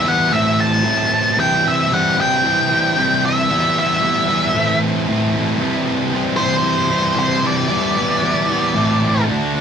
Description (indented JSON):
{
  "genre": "rock",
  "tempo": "114 BPM",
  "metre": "4/4",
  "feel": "straight",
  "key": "unclear",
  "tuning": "A4 = 436 Hz",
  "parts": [
    { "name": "octave-fuzz lead guitar", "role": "melody", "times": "0.0-9.2 s", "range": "C5 to A5", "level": "-17 LUFS", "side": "equal", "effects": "distortion" },
    { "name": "thick fuzz guitar", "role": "riff", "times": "0.0-9.6 s", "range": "A2 to F#4", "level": "-17 LUFS", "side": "equal", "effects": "distortion" }
  ],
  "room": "moderate studio reverb, RT60 0.6 s",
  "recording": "rough rehearsal-room recording",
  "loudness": "-14 LUFS",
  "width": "side -7 dB against mid",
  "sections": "0.0-9.6 A section",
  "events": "none",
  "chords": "0.3 Am; 1.4 C; 3.5 Em; 4.5 Am; 5.6 C; 7.7 Em7; 8.7 Am"
}